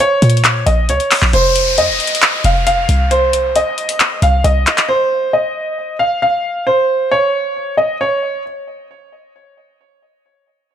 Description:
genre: hip hop, trap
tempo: 135 BPM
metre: 4/4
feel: half-time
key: unclear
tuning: A4 = 440 Hz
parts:
  - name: warm concert grand piano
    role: melody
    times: 0.0-8.4 s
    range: C5 to F5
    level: -14 LUFS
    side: right 1 dB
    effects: none
  - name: trap drum kit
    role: drums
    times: 0.0-4.9 s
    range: handclaps, hi-hat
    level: -15 LUFS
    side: left 1 dB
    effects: vintage 12-bit sampler grit
  - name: short 808-style bass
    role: bass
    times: 0.2-4.7 s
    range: F1 to Bb2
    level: -14 LUFS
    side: equal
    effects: none
  - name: downlifter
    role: sound effects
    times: 1.3-4.9 s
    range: none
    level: -21 LUFS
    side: left 2 dB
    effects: none
room: light reverb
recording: none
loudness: -12 LUFS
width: side -9 dB against mid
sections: 0.0-1.3 A section; 1.3-8.4 B section; 8.4-10.7 C section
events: none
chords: 0.0 Bbm; 1.3 F5; 3.1 Cm; 4.9 N.C.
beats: 0.00 0.44 0.89 | 1.33 1.78 2.22 2.67 | 3.11 3.56 4.00 4.44 | 4.89 5.33 5.78 6.22 | 6.67 7.11 7.55 8.00

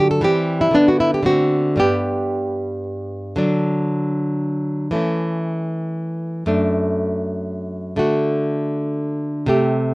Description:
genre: classical, baroque-style dance for nylon-string guitar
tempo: 117 BPM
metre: 3/4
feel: rubato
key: G major, D major from 3.4 s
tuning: A4 = 439 Hz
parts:
  - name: nylon-string guitar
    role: solo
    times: 0.0-9.9 s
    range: F#2 to A4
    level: -18 LUFS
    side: equal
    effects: none
room: light reverb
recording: worn, warbling old tape, cassette tape, warbly pitch drift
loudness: -18 LUFS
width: side -22 dB against mid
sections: 0.0-3.4 A section; 3.4-9.9 A section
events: none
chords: 0.2 C/E; 0.8 G/D; 1.3 D7; 1.8 G; 3.4 D; 5.0 A/E; 6.5 D/F#; 8.0 D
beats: | 0.25 0.76 1.28 | 1.81 2.34 2.87 | 3.40 3.92 4.44 | 4.96 5.47 5.98 | 6.50 7.00 7.50 | 8.01 8.51 9.02 | 9.52

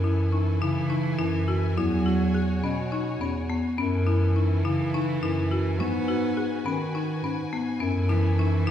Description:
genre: contemporary instrumental, chamber music in an uneven meter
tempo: 209 BPM (eighths)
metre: 7/8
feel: straight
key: F# dorian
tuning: A4 = 440 Hz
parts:
  - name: warm cello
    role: melody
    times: 0.0-8.7 s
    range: E3 to B3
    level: -29 LUFS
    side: right 4 dB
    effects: none
  - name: rich studio string section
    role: sustained chords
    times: 0.0-8.7 s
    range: E4 to G#5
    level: -37 LUFS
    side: left 2 dB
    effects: none
  - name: folk marimba with hard mallets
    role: arpeggios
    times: 0.0-8.7 s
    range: B3 to G#4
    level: -29 LUFS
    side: left 4 dB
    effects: none
  - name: mellow bass clarinet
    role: bass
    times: 0.0-8.7 s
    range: E2 to D#3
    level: -25 LUFS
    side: equal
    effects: none
room: wet recital hall reverb, RT60 1.4 s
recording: recorded in a church or concert hall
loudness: -23 LUFS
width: side -10 dB against mid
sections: 0.0-8.7 A section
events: none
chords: 0.0 F#m9; 1.8 E69; 3.8 F#m9; 5.8 G#m7; 7.8 F#m9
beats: 0.04 0.33 0.62 0.91 1.19 1.48 | 1.77 2.06 2.34 2.63 2.92 3.21 3.49 | 3.78 4.07 4.36 4.64 4.93 5.22 5.51 | 5.79 6.08 6.37 6.66 6.95 7.23 7.52 | 7.81 8.10 8.38 8.67

